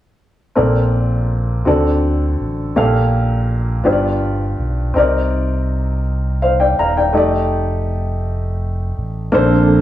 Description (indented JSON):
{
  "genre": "gospel",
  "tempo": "55 BPM (dotted quarters)",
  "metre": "6/8",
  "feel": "straight",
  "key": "unclear",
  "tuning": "A4 = 439 Hz",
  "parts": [
    { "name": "warm upright piano", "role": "accompaniment", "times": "0.6-9.8 s", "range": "G2 to Bb5", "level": "-16 LUFS", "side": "left 1 dB", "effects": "none" },
    { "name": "sub bass with octave", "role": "bass", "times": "0.6-9.8 s", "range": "Eb1 to D2", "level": "-19 LUFS", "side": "equal", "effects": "none" },
    { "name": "mellow tonewheel organ", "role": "sustained chords", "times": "9.3-9.8 s", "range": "F3 to A4", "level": "-13 LUFS", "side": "right 2 dB", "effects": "fast rotary speaker, chorus vibrato" }
  ],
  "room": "moderate large studio reverb, RT60 1.1 s, small room ambience",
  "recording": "none",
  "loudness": "-14 LUFS",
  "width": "side -13 dB against mid",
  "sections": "0.6-9.3 A section",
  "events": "none",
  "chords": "0.6 Bbmaj9; 1.7 D7; 2.8 Gm9/Bb; 3.9 G7; 5.0 Cm9; 7.1 F13"
}